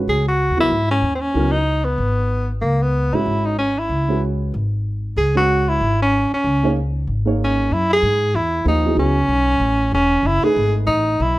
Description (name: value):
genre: modal jazz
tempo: 189 BPM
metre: 4/4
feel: swing 61% on 8ths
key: C# dorian, F# dorian from 7.7 s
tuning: A4 = 440 Hz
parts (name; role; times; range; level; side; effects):
- dark upright piano; accompaniment; 0.0-10.9 s; E#3 to C#5; -22 LUFS; right 2 dB; none
- upright bass; bass; 0.0-11.4 s; E1 to G#2; -20 LUFS; equal; none
- warm tenor saxophone; melody; 0.1-11.4 s; A#3 to G#4; -18 LUFS; equal; none
room: light reverb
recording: none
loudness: -16 LUFS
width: side -18 dB against mid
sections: 0.0-7.7 A section; 7.7-11.4 B section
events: none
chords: 0.0 C#7(no3); 7.7 F#m9